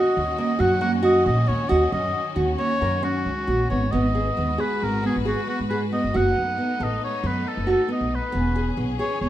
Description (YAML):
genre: contemporary instrumental, chamber music in an uneven meter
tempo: 136 BPM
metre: 5/4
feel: straight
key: G# minor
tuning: A4 = 440 Hz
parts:
  - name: warm oboe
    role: melody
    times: 0.0-9.3 s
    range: F#4 to F#5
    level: -27 LUFS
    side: equal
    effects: none
  - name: bright studio string section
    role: sustained chords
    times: 0.0-9.3 s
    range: D#3 to B4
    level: -32 LUFS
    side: left 3 dB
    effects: none
  - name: nylon-string guitar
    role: arpeggios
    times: 0.0-9.3 s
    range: A#3 to A#4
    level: -24 LUFS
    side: right 1 dB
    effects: none
  - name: upright bass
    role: bass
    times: 0.2-9.3 s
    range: E1 to G#2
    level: -26 LUFS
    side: equal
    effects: none
room: moderate recital hall reverb, RT60 1.3 s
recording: none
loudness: -20 LUFS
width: side -13 dB against mid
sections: 0.0-3.9 A section; 3.9-9.3 B section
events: none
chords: 0.0 D#m7; 3.9 G#m7; 6.2 B7/F#; 8.3 E6